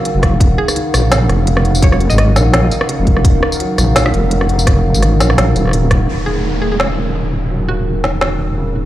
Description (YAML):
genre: half-time drum and bass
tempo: 169 BPM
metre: 4/4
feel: swing 55% on 16ths, half-time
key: unclear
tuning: A4 = 439 Hz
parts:
  - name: dark analog pad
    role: sustained chords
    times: 0.0-8.9 s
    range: Eb4 to Gb5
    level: -22 LUFS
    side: left 1 dB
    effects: chorus, phaser, vintage 12-bit sampler grit, sidechain pumping
  - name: felt-muted upright piano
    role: arpeggios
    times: 0.0-8.9 s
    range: Db3 to Eb4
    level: -21 LUFS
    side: right 2 dB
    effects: low-pass filter, digital delay
  - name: deep soft wobble bass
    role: bass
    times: 0.1-8.9 s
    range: Eb1 to Bb1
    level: -14 LUFS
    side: equal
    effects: chorus
  - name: organic electronic drum kit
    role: drums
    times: 0.1-8.3 s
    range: hi-hat, rim click, snare drum, tambourine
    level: -18 LUFS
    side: equal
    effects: none
  - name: electronic kick drum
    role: drums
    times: 0.2-6.0 s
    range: none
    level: -11 LUFS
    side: equal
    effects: none
  - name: mallet-like synth pluck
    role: melody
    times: 0.6-2.2, 6.3-8.0 s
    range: Gb4 to Eb5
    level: -24 LUFS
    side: right 1 dB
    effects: chorus, digital delay
  - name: downlifter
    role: sound effects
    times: 6.1-8.9 s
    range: none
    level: -25 LUFS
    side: equal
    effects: none
room: light reverb, digital ambience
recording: played on a big sound system in a bare room, large studio reverb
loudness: -11 LUFS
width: side -14 dB against mid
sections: 0.0-6.1 A section; 6.1-8.9 B section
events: drop 0.0-6.1; band accent 5.9; filter sweep on felt piano 6.1-8.9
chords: 0.0 Ebmadd9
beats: 0.05 | 0.41 0.76 1.11 1.47 | 1.82 2.18 2.54 2.89 | 3.25 3.60 3.96 4.31 | 4.67 5.02 5.38 5.73 | 6.08 6.44 6.79 7.15 | 7.50 7.86 8.21 8.57